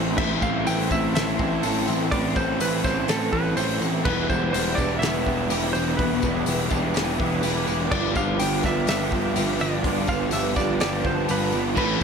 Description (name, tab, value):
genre	rock, shoegaze and dream pop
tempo	124 BPM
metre	4/4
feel	straight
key	unclear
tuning	A4 = 440 Hz
part	warbly tape-like pad	sustained chords	0.0-12.0 s	F4 to D6	-33 LUFS	equal	chorus, built-in reverb, phaser
part	direct-recorded clean electric guitar	arpeggios	0.0-12.0 s	E3 to A4	-34 LUFS	right 15 dB	lush chorus, tape echo
part	crunchy overdriven guitar	riff	0.0-12.0 s	E2 to G4	-28 LUFS	left 11 dB	lush chorus
part	raw garage guitar	riff	0.0-12.0 s	G2 to F4	-28 LUFS	right 12 dB	overdrive, reverse reverb
part	fuzz picked electric bass	bass	0.0-12.0 s	E1 to A1	-28 LUFS	equal	overdrive
part	direct-recorded clean electric guitar	melody	0.2-12.0 s	A4 to G5	-29 LUFS	right 2 dB	tape echo
part	loose indie drum kit	drums	0.2-12.0 s	crash cymbal, hi-hat, kick drum, snare drum	-28 LUFS	left 1 dB	none
part	tambourine	percussion	0.4-12.0 s	none	-38 LUFS	left 18 dB	none
part	distorted electric guitar	riff	11.8-12.0 s	A2 to A3	-26 LUFS	left 1 dB	overdrive
room	moderate studio reverb, RT60 0.6 s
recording	none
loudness	-21 LUFS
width	side -6 dB against mid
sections	0.0-12.0 A section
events	none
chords	0.0 Am7; 4.1 Em7; 7.9 G7